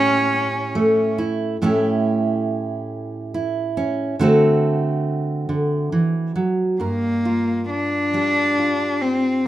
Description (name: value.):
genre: folk.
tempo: 46 BPM (dotted quarters).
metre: 6/8.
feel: straight.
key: unclear.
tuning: A4 = 440 Hz.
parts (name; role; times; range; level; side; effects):
warm cello; melody; 0.0-1.2, 6.8-9.5 s; Bb3 to D4; -19 LUFS; equal; none.
fingerpicked steel-string acoustic guitar; accompaniment; 0.0-9.5 s; G2 to Bb4; -20 LUFS; right 1 dB; none.
room: moderate large studio reverb, RT60 0.9 s.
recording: minimal, uncompressed stereo recording.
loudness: -18 LUFS.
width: side -13 dB against mid.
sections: 0.0-1.6 A section; 1.6-6.8 B section; 6.8-9.5 C section.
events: none.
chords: 0.0 A7; 4.2 D7; 6.8 Gm7.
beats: 0.31 | 1.61 2.90 | 4.19 5.49 | 6.80 8.13 | 9.45.